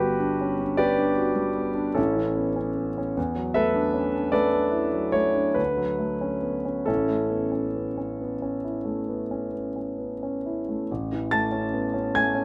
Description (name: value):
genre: classical, impressionist solo piano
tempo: 43-53 BPM (dotted quarters)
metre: 9/8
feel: rubato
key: A major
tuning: A4 = 439 Hz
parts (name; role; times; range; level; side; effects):
- warm concert grand piano; solo; 0.0-12.4 s; G1 to A6; -26 LUFS; equal; none
room: light reverb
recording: none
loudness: -26 LUFS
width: mono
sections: 0.0-10.9 A section; 10.9-12.4 A section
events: none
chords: 0.0 Gmaj7; 2.0 Aadd9; 3.2 E11; 5.6 Dmaj7; 6.9 Aadd9; 10.9 Amaj7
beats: 0.80 1.98 | 3.17 4.35 5.59 | 6.88 8.19 9.53 | 10.89 12.14